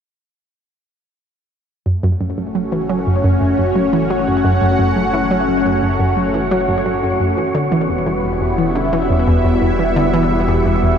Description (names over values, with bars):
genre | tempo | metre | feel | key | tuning
ambient, sequencer-driven space music | 87 BPM | 4/4 | straight | unclear | A4 = 440 Hz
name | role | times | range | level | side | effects
lush unison pad | sustained chords | 1.9-11.0 s | G3 to F#5 | -17 LUFS | equal | chorus, phaser
analog pluck | riff | 1.9-10.9 s | E2 to F#3 | -17 LUFS | equal | chorus, ping-pong delay
warm sub bass | bass | 1.9-11.0 s | E1 to F#1 | -27 LUFS | equal | none
wind-like tuned noise texture | texture | 2.5-11.0 s | F#4 to F#5 | -26 LUFS | left 3 dB | built-in reverb
room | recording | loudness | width
wet huge ambient reverb, RT60 8.3 s | dark, warm production | -14 LUFS | side -8 dB against mid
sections
1.9-11.0 A section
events
fade-in on sub bass 1.9-11.0; filter sweep on synth arpeggio sound 1.9-11.0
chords
1.9 F#m; 7.4 Em